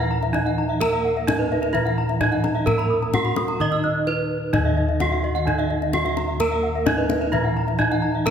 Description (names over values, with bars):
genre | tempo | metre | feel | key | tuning
Balinese gamelan | 129 BPM | 4/4 | straight | Eb pelog | A4 = 435 Hz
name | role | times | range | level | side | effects
gamelan-type bronze metallophone | melody | 0.0-8.3 s | Eb4 to Eb5 | -24 LUFS | right 2 dB | none
gamelan-type bronze metallophone | accompaniment | 0.0-8.3 s | Eb3 to Eb4 | -30 LUFS | right 3 dB | none
gamelan-type bronze metallophone | arpeggios | 0.0-8.3 s | Cb5 to Fb6+35c | -30 LUFS | right 6 dB | none
gamelan-type bossed gongs | bass | 0.0-8.3 s | Eb2 to Bb4 | -25 LUFS | equal | none
gamelan-type bronze metallophone | arpeggios | 0.1-8.3 s | Eb5 to Gb6 | -28 LUFS | left 5 dB | none
kendang | percussion | 0.2-8.3 s | none | -28 LUFS | left 3 dB | none
room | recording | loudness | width
wet concert hall reverb, RT60 2.4 s | none | -19 LUFS | side -8 dB against mid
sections
0.0-8.3 A section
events
break 3.8-4.5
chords
none